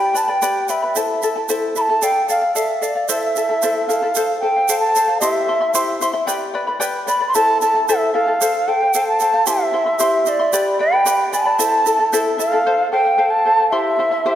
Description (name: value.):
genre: andean folk, Andean ensemble.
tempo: 113 BPM.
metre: 2/4.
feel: straight.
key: unclear.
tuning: A4 = 440 Hz.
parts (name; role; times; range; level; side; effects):
mellow large quena; melody; 0.0-14.4 s; D5 to C6; -17 LUFS; right 1 dB; none.
charango; accompaniment; 0.0-14.4 s; E4 to C6; -20 LUFS; left 2 dB; none.
egg shaker; percussion; 0.2-12.5 s; none; -26 LUFS; right 9 dB; none.
room: wet concert hall reverb, RT60 2.2 s.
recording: none.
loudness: -15 LUFS.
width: side -11 dB against mid.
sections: 0.0-4.1 A section; 4.1-12.7 B section; 12.7-14.4 B section.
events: none.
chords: 0.0 G; 0.9 Am; 2.0 Dm; 3.1 Am; 4.1 F; 5.2 C; 6.3 G; 7.3 Am; 8.4 F; 9.5 C; 10.5 G; 11.6 Am; 12.7 F; 13.7 C.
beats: 0.41 | 0.94 1.48 | 2.01 2.55 | 3.08 3.61 | 4.15 4.68 | 5.21 5.75 | 6.28 6.81 | 7.34 7.87 | 8.40 8.94 | 9.47 10.00 | 10.53 11.06 | 11.60 12.13 | 12.66 13.19 | 13.72 14.25.